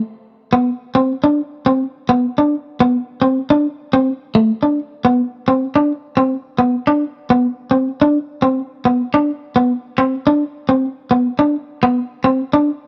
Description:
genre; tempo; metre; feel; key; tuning
highlife; 106 BPM; 4/4; straight; unclear; A4 = 440 Hz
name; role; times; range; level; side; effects
clean electric guitar; solo; 0.5-12.7 s; A3 to D4; -16 LUFS; equal; none
room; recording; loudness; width
digital ambience; dry, close 1970s-style studio recording; -17 LUFS; mono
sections
0.0-6.5 A section; 6.5-12.9 B section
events
none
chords
none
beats
0.27 0.83 1.39 | 1.95 2.52 3.08 3.64 | 4.20 4.76 5.33 5.89 | 6.45 7.01 7.58 8.14 | 8.71 9.27 9.84 10.40 | 10.97 11.53 12.10 12.66

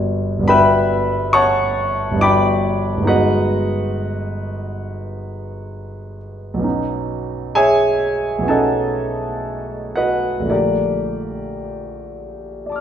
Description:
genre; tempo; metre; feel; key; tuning
classical, impressionist solo piano; 54-70 BPM; 4/4; rubato; unclear; A4 = 437 Hz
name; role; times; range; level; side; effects
warm grand piano; solo; 0.0-12.8 s; G1 to E#6; -17 LUFS; equal; none
room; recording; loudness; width
wet recital hall reverb, RT60 1.4 s; recorded in a church or concert hall; -16 LUFS; side -9 dB against mid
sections
0.0-12.8 A section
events
none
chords
0.0 Gmaj7; 3.1 G#m7/G; 6.6 B9; 10.5 A#maj7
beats
0.51 1.37 2.23 | 3.10 4.00 4.89 5.77 | 6.65 7.56 8.49 9.46 | 10.52 11.60 12.67

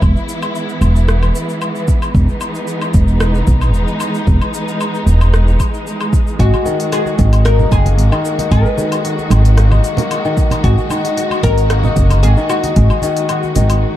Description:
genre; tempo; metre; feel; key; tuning
organic downtempo; 113 BPM; 4/4; straight; G# minor; A4 = 440 Hz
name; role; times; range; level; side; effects
warm studio string section; sustained chords; 0.0-14.0 s; D#3 to F#4; -22 LUFS; equal; vintage 12-bit sampler grit, sidechain pumping, shimmer reverb
upright bass; bass; 0.0-13.8 s; E1 to B1; -11 LUFS; equal; none
electronic kick drum; drums; 0.0-12.9 s; none; -15 LUFS; equal; none
organic electronic drum kit; drums; 0.0-13.8 s; cabasa, hi-hat, rim click, woodblock; -24 LUFS; left 2 dB; none
oud; melody; 6.4-13.8 s; F#4 to B4; -21 LUFS; left 2 dB; tape echo, shimmer reverb
kora; arpeggios; 6.4-14.0 s; D#3 to F#4; -19 LUFS; left 3 dB; ping-pong delay, shimmer reverb
congas; percussion; 6.5-13.7 s; none; -21 LUFS; right 4 dB; none
room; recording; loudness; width
light reverb, small room ambience; dark, warm production; -11 LUFS; side -13 dB against mid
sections
0.0-14.0 A section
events
none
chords
0.0 Emaj7; 6.4 G#m7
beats
| 0.02 0.55 1.08 1.61 | 2.15 2.68 3.21 3.74 | 4.27 4.80 5.33 5.86 | 6.39 6.92 7.45 7.99 | 8.52 9.05 9.58 10.11 | 10.64 11.17 11.70 12.23 | 12.76 13.29 13.83

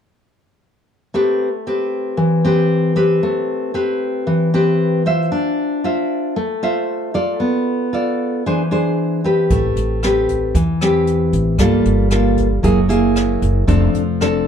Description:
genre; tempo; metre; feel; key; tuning
bossa nova; 115 BPM; 4/4; straight; A minor; A4 = 440 Hz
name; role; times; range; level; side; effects
nylon-string guitar; accompaniment; 1.1-14.5 s; E3 to E5; -16 LUFS; left 1 dB; none
upright bass; bass; 9.5-14.5 s; F1 to E2; -19 LUFS; right 1 dB; none
jazz brush drum kit; drums; 9.5-14.3 s; hi-hat, kick drum, rim click; -23 LUFS; right 1 dB; none
room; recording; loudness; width
light reverb; dark, warm production; -15 LUFS; side -8 dB against mid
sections
1.1-9.5 A section; 9.5-14.5 B section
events
none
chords
1.1 Am9; 5.3 Dm9; 7.4 Bm7b5; 8.5 E7alt; 9.5 Am9; 11.6 Gm9; 12.6 F#9; 13.7 F6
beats
| 1.13 1.66 2.18 2.70 | 3.22 3.75 4.27 4.79 | 5.32 5.84 6.36 6.88 | 7.41 7.93 8.45 8.98 | 9.50 10.02 10.54 11.07 | 11.59 12.11 12.64 13.16 | 13.68 14.21

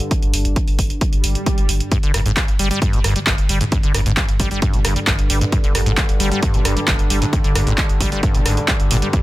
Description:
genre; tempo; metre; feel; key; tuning
driving peak-time techno; 133 BPM; 4/4; straight; unclear; A4 = 440 Hz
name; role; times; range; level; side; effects
analog drone; drone; 0.0-9.2 s; G2 to D3; -26 LUFS; equal; chorus, sidechain pumping
punchy analog drum machine; drums; 0.0-9.2 s; handclaps, hi-hat, rim click; -22 LUFS; right 1 dB; none
electronic kick drum; drums; 0.1-9.2 s; none; -18 LUFS; equal; overdrive
warm sub bass; bass; 0.2-9.0 s; G1; -20 LUFS; equal; tube saturation, sidechain pumping, low-pass filter
swell; sound effects; 1.1-1.9 s; none; -30 LUFS; right 2 dB; none
acid bass, saw; riff; 1.9-9.2 s; G1 to G3; -22 LUFS; equal; wide subtle chorus, sidechain pumping, digital delay
room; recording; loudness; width
little or no reverb; none; -15 LUFS; side -17 dB against mid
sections
0.0-9.2 A section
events
swell 1.1-1.9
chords
0.0 G5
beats
| 0.11 0.56 1.01 1.47 | 1.92 2.37 2.82 3.27 | 3.72 4.17 4.62 5.07 | 5.53 5.98 6.43 6.88 | 7.33 7.78 8.23 8.68 | 9.13

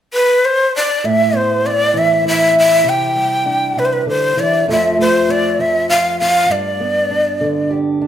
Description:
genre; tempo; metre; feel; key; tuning
folk; 66 BPM (dotted quarters); 6/8; straight; unclear; A4 = 440 Hz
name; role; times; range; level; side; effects
breathy bright shakuhachi; melody; 0.1-7.7 s; B4 to G5; -14 LUFS; equal; none
fingerpicked old ladder-braced acoustic guitar; accompaniment; 1.0-8.1 s; F2 to G4; -17 LUFS; equal; none
room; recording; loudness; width
moderate large studio reverb, RT60 1.3 s; band playing live in one room; -12 LUFS; side -10 dB against mid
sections
0.0-1.0 A section; 1.0-8.1 B section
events
none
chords
0.0 N.C.; 1.0 Amadd9; 2.9 Cadd9; 4.7 F; 6.5 G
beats
0.13 | 1.04 1.95 | 2.86 3.77 | 4.68 5.59 | 6.50 7.41

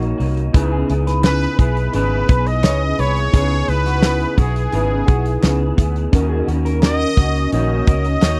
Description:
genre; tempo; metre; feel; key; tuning
indie pop, bedroom pop; 86 BPM; 4/4; straight; unclear; A4 = 443 Hz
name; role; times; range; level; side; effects
electric guitar through a small old amp; accompaniment; 0.0-8.4 s; C#3 to G#4; -26 LUFS; equal; ensemble chorus, vibrato effect
warbly lo-fi synth keys; accompaniment; 0.0-8.4 s; C#4 to C#5; -28 LUFS; equal; chorus, phaser
vintage muted fingered electric bass; bass; 0.0-8.4 s; G#1 to D#2; -22 LUFS; equal; none
loose indie drum kit; drums; 0.0-8.4 s; hi-hat, kick drum, snare drum; -16 LUFS; equal; none
electric guitar through a small old amp; second line; 0.7-8.4 s; F#4 to C#5; -30 LUFS; equal; lush chorus, tape echo
clear trumpet; melody; 1.2-8.4 s; G#4 to D#5; -25 LUFS; equal; analog chorus, tape echo
group handclap; percussion; 1.2-8.4 s; none; -34 LUFS; equal; none
room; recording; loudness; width
little or no reverb; dry, close 1970s-style studio recording; -17 LUFS; mono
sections
0.0-8.4 A section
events
none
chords
0.0 Bmaj7 (rootless); 0.5 C#m7; 6.1 D#m7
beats
| 0.54 1.24 1.94 2.64 | 3.34 4.04 4.73 5.43 | 6.13 6.83 7.52 8.22

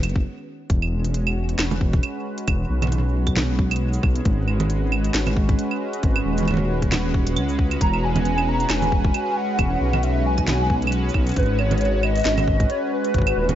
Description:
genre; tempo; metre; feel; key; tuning
IDM; 135 BPM; 4/4; swing 56% on 16ths; E major; A4 = 443 Hz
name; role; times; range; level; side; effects
warbly nostalgic lead; melody; 0.0-0.3, 7.8-13.6 s; B4 to A#5; -25 LUFS; equal; ensemble chorus, tape echo
warm analog pad; sustained chords; 0.0-13.6 s; D#3 to B4; -26 LUFS; right 1 dB; chorus, sidechain pumping
dark detuned saw bass; bass; 0.0-13.6 s; D#1 to C#2; -22 LUFS; equal; none
organic electronic drum kit; drums; 0.0-13.6 s; claves, congas, hi-hat, shaker, snare drum; -26 LUFS; right 3 dB; none
electronic kick drum; drums; 0.2-13.3 s; none; -21 LUFS; equal; none
room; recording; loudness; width
little or no reverb; nothing above 7.6 kHz; -19 LUFS; side -11 dB against mid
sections
0.7-13.6 A section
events
stop 0.3-0.7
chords
0.0 G#m; 0.7 E; 4.3 G#m; 7.8 E; 11.4 G#m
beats
0.25 | 0.70 1.14 1.59 2.03 | 2.48 2.92 3.37 3.81 | 4.25 4.70 5.14 5.59 | 6.03 6.48 6.92 7.37 | 7.81 8.25 8.70 9.14 | 9.59 10.03 10.48 10.92 | 11.37 11.81 12.25 12.70 | 13.14

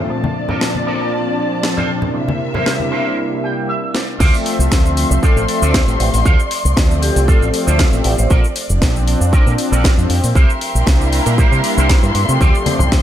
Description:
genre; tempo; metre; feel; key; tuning
nu-disco, nu disco; 117 BPM; 4/4; swing 53% on 16ths; D minor; A4 = 444 Hz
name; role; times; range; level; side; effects
warm analog pad; accompaniment; 0.0-13.0 s; Bb2 to E5; -21 LUFS; left 1 dB; chorus, sidechain pumping, analog delay
muted studio string section; sustained chords; 0.0-13.0 s; Bb2 to C6; -23 LUFS; left 1 dB; sidechain pumping
electric guitar with an envelope filter; riff; 0.1-12.7 s; E4 to G5; -24 LUFS; right 3 dB; ensemble chorus, analog delay
congas; percussion; 0.2-2.9, 12.7-12.9 s; none; -22 LUFS; left 1 dB; none
house drum kit; drums; 0.6-13.0 s; crash cymbal, hi-hat, shaker, snare drum; -21 LUFS; equal; none
fingered electric bass with an envelope filter; bass; 4.2-13.0 s; F1 to C3; -16 LUFS; equal; none
electronic kick drum; drums; 4.2-13.0 s; none; -13 LUFS; equal; none
vibraphone with medium hard mallets; melody; 5.2-8.4 s; G4 to C5; -25 LUFS; left 2 dB; ping-pong delay
room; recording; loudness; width
light reverb, digital ambience; none; -13 LUFS; side -11 dB against mid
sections
0.0-4.2 A section; 4.2-13.0 B section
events
filter sweep on clean electric guitar 0.0-4.2; clean electric guitar fill 3.2-4.2; drum fill 3.9; drop 4.2-13.0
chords
0.1 Bbmaj7; 2.1 C7; 4.2 Dm7; 8.3 Bbmaj7; 10.4 C7; 12.4 Dm7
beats
| 0.10 0.61 1.12 1.64 | 2.15 2.66 3.17 3.69 | 4.20 4.71 5.23 5.74 | 6.25 6.76 7.28 7.79 | 8.30 8.82 9.33 9.84 | 10.36 10.87 11.38 11.89 | 12.41 12.92

